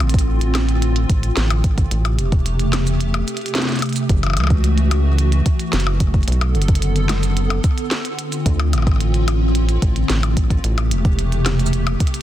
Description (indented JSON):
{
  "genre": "IDM",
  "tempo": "110 BPM",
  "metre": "4/4",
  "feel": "straight",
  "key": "unclear",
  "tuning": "A4 = 443 Hz",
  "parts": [
    { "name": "hollow soft pad", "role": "sustained chords", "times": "0.0-12.2 s", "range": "C3 to A4", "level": "-23 LUFS", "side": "equal", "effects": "ensemble chorus" },
    { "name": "rubbery square bass", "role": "bass", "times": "0.0-12.0 s", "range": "E1 to D2", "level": "-18 LUFS", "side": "equal", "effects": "none" },
    { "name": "glitchy drum kit", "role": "drums", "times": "0.0-12.2 s", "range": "hi-hat, percussion blips, shaker, snare drum", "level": "-25 LUFS", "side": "left 1 dB", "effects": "digital delay" },
    { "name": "electronic kick drum", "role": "drums", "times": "0.1-12.1 s", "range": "none", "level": "-17 LUFS", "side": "equal", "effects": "none" }
  ],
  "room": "digital ambience",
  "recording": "dense, heavily limited modern master",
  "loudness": "-16 LUFS",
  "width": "side -13 dB against mid",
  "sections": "0.0-12.2 A section",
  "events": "none",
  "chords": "0.0 Dm7; 1.9 Am7; 4.1 F#m7; 6.3 Bm7; 8.2 Dm7; 10.6 Am7"
}